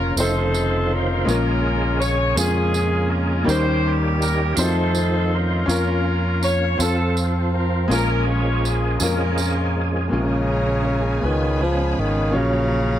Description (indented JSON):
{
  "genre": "slow gospel",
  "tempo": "54 BPM (dotted quarters)",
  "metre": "6/8",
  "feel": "straight",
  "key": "Bb minor",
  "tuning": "A4 = 440 Hz",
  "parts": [
    { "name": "mellow horn section", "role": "melody", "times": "0.0-10.1 s", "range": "C4 to Db5", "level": "-24 LUFS", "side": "left 1 dB", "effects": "none" },
    { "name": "bright baby grand piano", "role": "accompaniment", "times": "0.0-13.0 s", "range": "Bb2 to Db5", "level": "-25 LUFS", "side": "left 3 dB", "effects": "none" },
    { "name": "overdriven tonewheel organ", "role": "sustained chords", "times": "0.0-13.0 s", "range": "Db3 to C5", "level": "-26 LUFS", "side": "right 2 dB", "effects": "slow rotary speaker, chorus vibrato" },
    { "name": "fingered electric bass", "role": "bass", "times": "0.0-13.0 s", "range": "F1 to F2", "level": "-22 LUFS", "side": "equal", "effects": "none" },
    { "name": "tambourine", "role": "percussion", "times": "0.2-9.7 s", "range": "none", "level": "-29 LUFS", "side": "right 8 dB", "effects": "none" },
    { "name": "warm studio string section", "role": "sustained chords", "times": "10.1-13.0 s", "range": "Db5 to Cb6", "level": "-33 LUFS", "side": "left 3 dB", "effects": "none" },
    { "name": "breathy tenor saxophone", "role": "melody", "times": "10.2-13.0 s", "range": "Db3 to F3", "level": "-23 LUFS", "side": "equal", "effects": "none" }
  ],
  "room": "small room ambience",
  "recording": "none",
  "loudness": "-18 LUFS",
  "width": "side -11 dB against mid",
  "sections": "0.0-10.1 A section; 10.1-13.0 B section",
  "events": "none",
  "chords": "0.2 F7; 1.3 Bbm7; 3.5 Eb7; 4.6 F7; 5.7 Bbm/F; 6.8 F; 7.9 Bbm7; 11.2 Db7; 12.3 Gbmaj7/Bb"
}